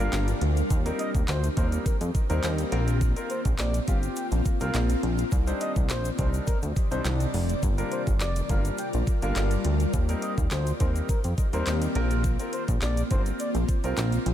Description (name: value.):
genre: dance-pop.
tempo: 104 BPM.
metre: 4/4.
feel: straight.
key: unclear.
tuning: A4 = 440 Hz.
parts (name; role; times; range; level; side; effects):
expressive synth lead; melody; 0.0-14.0 s; Bb4 to G5; -36 LUFS; left 1 dB; chorus, diffuse ambient delay.
clear concert grand piano; accompaniment; 0.0-14.2 s; G3 to C5; -34 LUFS; equal; wide subtle chorus, sidechain pumping.
ethereal airy pad; sustained chords; 0.0-14.3 s; C3 to D5; -33 LUFS; left 2 dB; ensemble chorus, built-in reverb, sidechain pumping.
chorused synth bass; bass; 0.0-14.3 s; F1 to F2; -26 LUFS; equal; sidechain pumping.
smooth R&B drum kit; drums; 0.1-14.3 s; handclaps, hi-hat, kick drum, snare drum; -28 LUFS; equal; none.
egg shaker; percussion; 0.1-14.3 s; none; -46 LUFS; left 12 dB; none.
room: digital ambience.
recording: none.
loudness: -24 LUFS.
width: side -11 dB against mid.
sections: 0.0-14.3 A section.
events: none.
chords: 0.0 Gm7; 0.7 Eb6; 2.7 Bbsus2; 5.3 Cmadd9; 7.6 Gm7; 9.9 Eb6; 12.0 Bbsus2.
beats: 0.13 | 0.70 1.28 1.86 2.43 | 3.01 3.59 4.17 4.74 | 5.32 5.90 6.47 7.05 | 7.63 8.20 8.78 9.36 | 9.93 10.51 11.09 11.66 | 12.24 12.82 13.40 13.97.